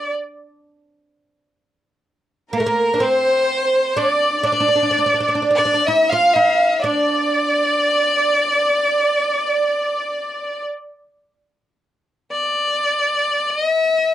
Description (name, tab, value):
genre	arabic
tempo	free time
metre	none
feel	none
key	D maqam bayati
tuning	A4 = 440 Hz
part	bright violin	melody	0.0-14.1 s	Bb4 to F5	-18 LUFS	left 2 dB	none
part	oud	second line	0.0-10.6 s	A3 to F4	-22 LUFS	right 2 dB	none
part	warm studio violin section	second line	0.0-10.6 s	Bb4 to F5	-19 LUFS	right 2 dB	none
room	little or no reverb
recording	dry, close 1970s-style studio recording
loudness	-15 LUFS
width	side -12 dB against mid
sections	0.0-11.6 A section; 11.6-14.1 B section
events	none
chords	none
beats	free time